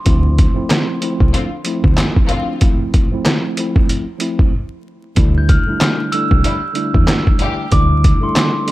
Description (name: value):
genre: hip hop, boom-bap hip-hop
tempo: 94 BPM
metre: 4/4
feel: swing 58% on 16ths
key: D minor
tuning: A4 = 441 Hz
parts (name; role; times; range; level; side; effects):
- mellow tine electric piano; accompaniment; 0.0-8.7 s; D3 to E4; -21 LUFS; equal; medium stereo tremolo, high-pass filter, low-pass filter
- deep dub fingered electric bass; bass; 0.1-8.1 s; C2 to E2; -15 LUFS; equal; none
- trip hop sampler-style drum kit; drums; 0.1-8.7 s; handclaps, hi-hat, kick drum, snare drum; -14 LUFS; equal; overdrive
- warm studio string section; stabs; 1.3-2.6, 6.4-7.7 s; A2 to G4; -24 LUFS; left 4 dB; high-pass filter, low-pass filter, slapback echo
- glockenspiel with rubber mallets; melody; 5.4-8.7 s; C6 to G6; -23 LUFS; right 2 dB; high-pass filter, low-pass filter, slapback echo
room: digital ambience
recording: vinyl crackle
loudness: -13 LUFS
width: side -17 dB against mid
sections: 0.0-8.7 A section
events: break 4.5-5.2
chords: 0.1 Dm7; 5.2 C69 (rootless)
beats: | 0.06 0.70 1.34 1.98 | 2.62 3.25 3.89 4.53 | 5.17 5.81 6.45 7.08 | 7.72 8.36